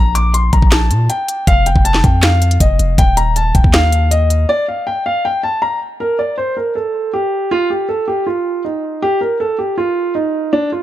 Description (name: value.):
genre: hip hop, trap.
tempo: 159 BPM.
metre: 4/4.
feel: half-time.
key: unclear.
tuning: A4 = 440 Hz.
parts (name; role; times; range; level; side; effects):
dark baby grand piano; melody; 0.0-10.8 s; D4 to D6; -16 LUFS; equal; none.
long sustained 808-style bass; bass; 0.0-4.5 s; Eb1 to Bb2; -14 LUFS; equal; none.
trap drum kit; drums; 0.2-4.4 s; finger snaps, hi-hat, kick drum, snare drum; -13 LUFS; equal; none.
room: digital ambience.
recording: none.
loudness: -12 LUFS.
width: side -13 dB against mid.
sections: 0.0-6.0 A section; 6.0-10.8 B section.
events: break 4.5-6.0.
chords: 0.0 Bbmaj7(no3); 1.5 F7sus2; 3.0 Ebsus2; 4.5 N.C..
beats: 0.34 0.72 1.10 | 1.47 1.85 2.23 2.60 | 2.98 3.36 3.74 4.12 | 4.49 4.87 5.25 5.62 | 6.00 6.38 6.76 7.13 | 7.51 7.89 8.27 8.64 | 9.02 9.40 9.78 10.15 | 10.53.